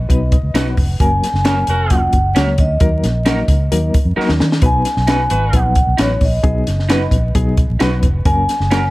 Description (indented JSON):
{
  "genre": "uptempo 1960s-style soul",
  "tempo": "132 BPM",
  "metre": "4/4",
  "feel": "straight",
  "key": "unclear",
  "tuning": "A4 = 445 Hz",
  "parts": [
    { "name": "vibraphone with medium mallets", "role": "melody", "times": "0.0-8.9 s", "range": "C#5 to G#5", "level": "-20 LUFS", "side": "equal", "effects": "none" },
    { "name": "vintage muted fingered electric bass", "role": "bass", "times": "0.0-8.9 s", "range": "E#1 to D#3", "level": "-17 LUFS", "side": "equal", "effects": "none" },
    { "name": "barky reed electric piano", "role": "accompaniment", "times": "0.1-8.9 s", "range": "F#3 to F#5", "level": "-22 LUFS", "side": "left 2 dB", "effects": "overdrive, fast tremolo" },
    { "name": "compact cocktail drum kit", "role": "drums", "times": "0.1-8.8 s", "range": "hi-hat, kick drum, snare drum", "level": "-16 LUFS", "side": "equal", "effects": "none" },
    { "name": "electric guitar through a small old amp", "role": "stabs", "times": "0.5-8.8 s", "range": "C#4 to B4", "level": "-25 LUFS", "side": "right 4 dB", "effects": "lush chorus" },
    { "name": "warm horn section", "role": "second line", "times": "1.7-2.0, 5.3-5.6 s", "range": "C#4 to B4", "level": "-24 LUFS", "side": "right 2 dB", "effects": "none" }
  ],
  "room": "light reverb, studio ambience",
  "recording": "vinyl crackle",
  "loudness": "-12 LUFS",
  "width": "side -19 dB against mid",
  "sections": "0.0-8.9 A section",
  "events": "reed electric piano fill 0.1-1.0; drum fill 4.2-4.6",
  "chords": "0.0 B; 1.0 F#; 2.8 D#m; 4.6 B; 8.3 F#"
}